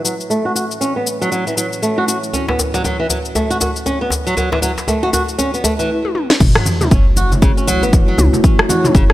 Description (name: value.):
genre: afro house.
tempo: 118 BPM.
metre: 4/4.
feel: swing 60% on 16ths.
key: F# minor.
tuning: A4 = 437 Hz.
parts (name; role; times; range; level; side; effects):
dark analog pad; sustained chords; 0.1-9.1 s; A3 to C#5; -24 LUFS; equal; chorus, phaser, sidechain pumping.
flamenco guitar; arpeggios; 0.0-9.1 s; C#3 to F#4; -18 LUFS; right 1 dB; sidechain pumping, low-pass filter, tape echo.
house drum kit; drums; 0.1-9.1 s; crash cymbal, rim click, shaker, snare drum, toms; -18 LUFS; left 2 dB; none.
djembe; percussion; 2.3-5.8 s; none; -22 LUFS; left 1 dB; none.
woody FM bass; bass; 6.4-9.1 s; F#1 to C#2; -16 LUFS; equal; sidechain pumping.
electronic kick drum; drums; 6.4-9.1 s; none; -12 LUFS; equal; none.
congas; percussion; 6.4-9.1 s; none; -22 LUFS; right 1 dB; none.
sub drop; sound effects; 6.5-8.4 s; none; -22 LUFS; equal; none.
room: light reverb.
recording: none.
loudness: -13 LUFS.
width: side -15 dB against mid.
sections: 0.0-6.4 A section; 6.4-9.1 B section.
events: filter sweep on analog synth pad 0.0-6.4; drum fill 6.0-6.4; drop 6.4-9.1; impact 6.4-8.4.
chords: 0.0 F#m7.